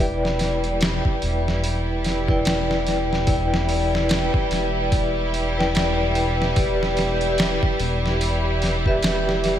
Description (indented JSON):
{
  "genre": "trip hop",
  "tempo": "73 BPM",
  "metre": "4/4",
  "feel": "swing 59% on 16ths",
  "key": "E minor",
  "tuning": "A4 = 438 Hz",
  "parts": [
    { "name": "vibraphone with medium hard mallets", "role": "accompaniment", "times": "0.0-9.6 s", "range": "E4 to G5", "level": "-24 LUFS", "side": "equal", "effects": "tremolo, vintage 12-bit sampler grit, tape echo" },
    { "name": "warm symphonic violin section", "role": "sustained chords", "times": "0.0-9.6 s", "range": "G3 to E4", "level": "-26 LUFS", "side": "equal", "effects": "none" },
    { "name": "dark detuned saw bass", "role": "bass", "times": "0.0-9.6 s", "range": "E1", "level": "-25 LUFS", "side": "equal", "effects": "none" },
    { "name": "backwards swelling texture", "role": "texture", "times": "0.0-9.6 s", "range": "G4", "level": "-33 LUFS", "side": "right 2 dB", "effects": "built-in reverb, wide subtle chorus" },
    { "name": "boom bap sampler-style drum kit", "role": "drums", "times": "0.2-9.6 s", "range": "hi-hat, kick drum, snare drum", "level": "-24 LUFS", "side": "equal", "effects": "overdrive, gated reverb" }
  ],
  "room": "moderate lush hall reverb, RT60 2.6 s",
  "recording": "bright 1980s-style digital production",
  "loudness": "-19 LUFS",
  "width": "side -10 dB against mid",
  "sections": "0.0-9.6 A section",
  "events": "none",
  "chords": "0.0 Em7",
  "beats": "0.81 1.63 2.45 | 3.27 4.10 4.92 5.74 | 6.56 7.38 8.21 9.03"
}